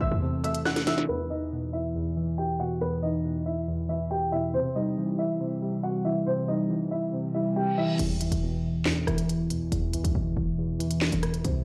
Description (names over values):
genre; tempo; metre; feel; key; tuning
hip hop, drill; 139 BPM; 4/4; half-time; E harmonic minor; A4 = 440 Hz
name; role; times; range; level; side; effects
dark baby grand piano; melody; 0.0-8.0 s; B3 to F#6; -32 LUFS; equal; tape echo
warbly lo-fi synth keys; accompaniment; 0.0-11.6 s; E2 to A3; -31 LUFS; equal; chorus, low-pass filter
short 808-style bass; bass; 0.0-1.0, 8.0-11.6 s; E1 to G2; -33 LUFS; equal; none
drill drum kit; drums; 0.4-1.1, 8.0-11.5 s; crash cymbal, handclaps, hi-hat, rim click, snare drum; -33 LUFS; equal; none
reverse cymbal; sound effects; 7.6-8.0 s; none; -43 LUFS; equal; none
room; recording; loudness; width
light reverb, digital ambience; played on a big sound system in a bare room, stone room reverb, low-pass filter; -28 LUFS; mono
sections
0.0-1.1 A section; 1.1-8.0 B section; 8.0-11.6 C section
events
drum fill 0.7-1.1; filter sweep 1.1-8.0; reverse cymbal 7.6-8.0; filter sweep on synth keys 8.0-11.6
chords
0.0 Am; 1.1 Em; 4.5 C; 8.0 Em